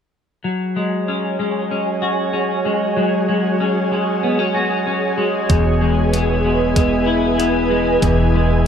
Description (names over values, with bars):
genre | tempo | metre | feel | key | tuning
dream pop | 95 BPM | 4/4 | straight | unclear | A4 = 439 Hz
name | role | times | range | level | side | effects
clean electric guitar | arpeggios | 0.4-8.7 s | E2 to F#4 | -18 LUFS | left 2 dB | wide subtle chorus, analog delay
ethereal airy pad | sustained chords | 0.9-8.7 s | E4 to G#5 | -21 LUFS | right 1 dB | ensemble chorus, built-in reverb
upright bass | bass | 5.5-8.7 s | E1 | -20 LUFS | equal | none
crisp 8-bit digital drum machine | drums | 5.5-8.2 s | hi-hat, kick drum | -18 LUFS | right 1 dB | none
room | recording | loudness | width
moderate spring reverb, RT60 1.9 s | echo-heavy mix | -15 LUFS | side -8 dB against mid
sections
0.5-8.7 A section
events
none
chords
0.5 F#sus2; 5.5 E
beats
| 0.45 1.08 1.71 2.34 | 2.98 3.61 4.24 4.87 | 5.50 6.13 6.76 7.40 | 8.03 8.66